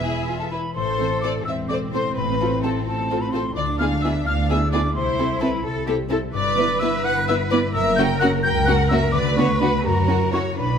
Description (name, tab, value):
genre	cinematic, playful, whimsical film cue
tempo	86 BPM (dotted quarters)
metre	6/8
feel	straight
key	A minor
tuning	A4 = 440 Hz
part	rich studio violin section	melody	0.0-10.4 s	F#4 to E5	-29 LUFS	left 4 dB	none
part	rich studio violin section	second line	0.0-10.8 s	G#4 to G5	-27 LUFS	left 2 dB	none
part	silver concert flute	second line	0.0-10.8 s	G#5 to G6	-26 LUFS	left 1 dB	none
part	rich studio viola section	accompaniment	0.0-10.4 s	A#3 to A4	-27 LUFS	right 2 dB	none
part	concert harp	arpeggios	0.0-10.8 s	F#2 to E5	-27 LUFS	left 10 dB	none
part	dark studio double bass section	bass	0.0-10.8 s	E1 to F#2	-26 LUFS	right 4 dB	none
part	rich studio cello section	bass	0.0-10.8 s	E2 to B4	-26 LUFS	right 3 dB	none
room	moderate scoring stage reverb, RT60 1.5 s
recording	none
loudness	-18 LUFS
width	side -7 dB against mid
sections	0.8-10.8 A section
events	none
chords	0.0 E; 0.8 Am; 2.2 Amadd9; 3.6 E7/D; 5.0 Am/C; 6.3 Em/G; 7.7 F#; 9.1 Bm/D; 9.9 F#7